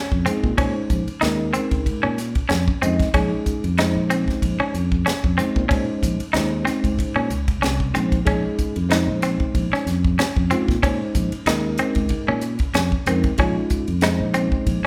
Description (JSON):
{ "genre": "electric jazz fusion", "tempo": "94 BPM", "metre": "4/4", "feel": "swing 54% on 16ths", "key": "Bb minor", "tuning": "A4 = 444 Hz", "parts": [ { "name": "semi-hollow electric guitar", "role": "stabs", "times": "0.0-14.9 s", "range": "C4 to Eb4", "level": "-26 LUFS", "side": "equal", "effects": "none" }, { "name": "fingered electric bass", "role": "bass", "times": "0.1-14.9 s", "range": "Bb1 to Bb2", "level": "-26 LUFS", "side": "equal", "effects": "none" }, { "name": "tight funk drum kit", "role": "drums", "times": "0.1-14.9 s", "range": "hi-hat, kick drum, ride cymbal, snare drum", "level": "-26 LUFS", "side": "equal", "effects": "none" }, { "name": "bell-like tine electric piano", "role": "accompaniment", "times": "0.3-14.9 s", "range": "Ab3 to Eb5", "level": "-27 LUFS", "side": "equal", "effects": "none" } ], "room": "moderate large studio reverb, RT60 0.9 s", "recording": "band playing live in one room", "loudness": "-21 LUFS", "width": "mono", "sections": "0.0-14.9 A section", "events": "none", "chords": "0.0 Bbm11" }